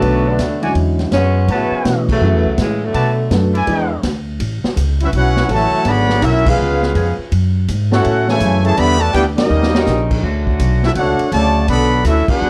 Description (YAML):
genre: jazz, big band swing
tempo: 165 BPM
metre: 4/4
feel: swing 65% on 8ths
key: A major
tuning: A4 = 440 Hz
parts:
  - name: clear saxophone section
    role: melody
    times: 0.0-3.3 s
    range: A2 to D4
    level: -21 LUFS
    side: equal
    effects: none
  - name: warm concert grand piano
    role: accompaniment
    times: 0.0-3.9 s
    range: D3 to A4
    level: -21 LUFS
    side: equal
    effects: none
  - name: warm trumpet section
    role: stabs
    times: 0.0-4.0 s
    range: E4 to A5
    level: -23 LUFS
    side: equal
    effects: none
  - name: upright bass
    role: bass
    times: 0.0-12.5 s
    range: G#1 to B2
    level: -19 LUFS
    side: equal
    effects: none
  - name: swinging big-band drum kit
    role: drums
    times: 0.0-12.3 s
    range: crash cymbal, hi-hat, kick drum, ride cymbal, snare drum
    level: -25 LUFS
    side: equal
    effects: none
  - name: clear trumpet section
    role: melody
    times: 5.0-12.5 s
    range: C#4 to B5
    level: -20 LUFS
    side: equal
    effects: none
  - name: bright trombone section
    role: second line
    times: 5.0-12.5 s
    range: C#3 to G4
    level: -21 LUFS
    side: equal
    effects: none
  - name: mellow saxophone section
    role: sustained chords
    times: 5.5-12.2 s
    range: D3 to A4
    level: -28 LUFS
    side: equal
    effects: none
room: light reverb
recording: worn, warbling old tape, cassette tape, warbly pitch drift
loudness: -15 LUFS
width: mono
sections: 0.0-4.4 A section; 4.4-12.5 B section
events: band accent 2.0, 6.4, 9.3, 12.2; drum fill 9.5-9.9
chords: 0.0 Bm7; 0.7 E13; 1.5 A69; 2.9 Bm7; 3.7 E7; 4.4 A69; 5.9 G#m7b5; 6.6 C#7; 7.3 F#m9; 8.8 Em7; 9.5 D#7; 10.2 Dmaj7; 11.7 Bm7